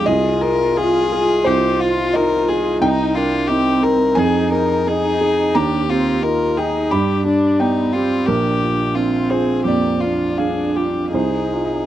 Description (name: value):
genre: neoclassical piano and strings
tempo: 87 BPM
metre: 4/4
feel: rubato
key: C minor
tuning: A4 = 441 Hz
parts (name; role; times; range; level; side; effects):
- warm violin; melody; 0.0-11.8 s; D4 to Bb4; -20 LUFS; left 5 dB; none
- dark viola; accompaniment; 0.0-11.9 s; Bb3 to F4; -21 LUFS; right 1 dB; none
- felt-muted upright piano; accompaniment; 0.0-11.9 s; Bb1 to B5; -19 LUFS; right 2 dB; none
room: light reverb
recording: dry, close 1970s-style studio recording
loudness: -15 LUFS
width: side -12 dB against mid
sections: 0.0-11.9 A section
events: none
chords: 0.1 Ab6/C; 2.8 Cm7; 4.2 Fm7; 5.5 Cm7/Eb; 6.9 G; 8.3 Bb; 11.1 Ab6/C